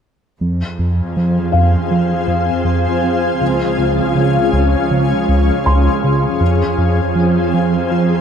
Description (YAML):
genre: cinematic, hybrid orchestral and electronic film score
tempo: 80 BPM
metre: 4/4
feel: straight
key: F minor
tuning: A4 = 439 Hz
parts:
  - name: shimmering ambient pad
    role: sustained chords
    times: 1.1-8.2 s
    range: F3 to Ab4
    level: -16 LUFS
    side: left 2 dB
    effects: chorus, built-in reverb
  - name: smooth synth bass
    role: riff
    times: 0.4-8.1 s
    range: Db2 to F3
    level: -16 LUFS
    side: right 1 dB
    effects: none
  - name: rich symphonic cello section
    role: bass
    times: 0.4-8.2 s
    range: Db2 to F2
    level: -22 LUFS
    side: right 3 dB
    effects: none
  - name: felt-muted upright piano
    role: texture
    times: 1.5-8.2 s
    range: F5 to C6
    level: -24 LUFS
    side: left 3 dB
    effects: digital delay
room: light reverb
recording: close, detailed microphones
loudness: -13 LUFS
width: side -7 dB against mid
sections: 0.4-8.2 A section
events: none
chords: 0.4 Fm; 3.4 Db; 6.4 Fm